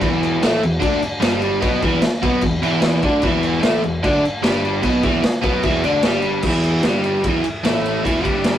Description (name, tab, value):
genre	garage rock duo or trio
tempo	149 BPM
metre	4/4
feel	straight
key	unclear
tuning	A4 = 438 Hz
part	biting overdriven guitar	riff	0.0-8.6 s	E2 to D4	-18 LUFS	equal	none
part	fuzz picked electric bass	bass	0.0-8.6 s	E1 to D2	-27 LUFS	equal	overdrive
part	raw garage drum kit	drums	0.0-8.5 s	crash cymbal, kick drum, ride cymbal, snare drum	-20 LUFS	equal	none
room	moderate stone room reverb, RT60 1.0 s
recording	rough rehearsal-room recording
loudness	-16 LUFS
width	side -11 dB against mid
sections	0.0-6.4 A section; 6.4-8.6 B section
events	none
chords	0.0 E5; 6.4 Emadd11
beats	| 0.01 0.41 0.81 1.22 | 1.62 2.02 2.42 2.83 | 3.23 3.63 4.03 4.43 | 4.83 5.24 5.64 6.04 | 6.44 6.84 7.24 7.64 | 8.05 8.45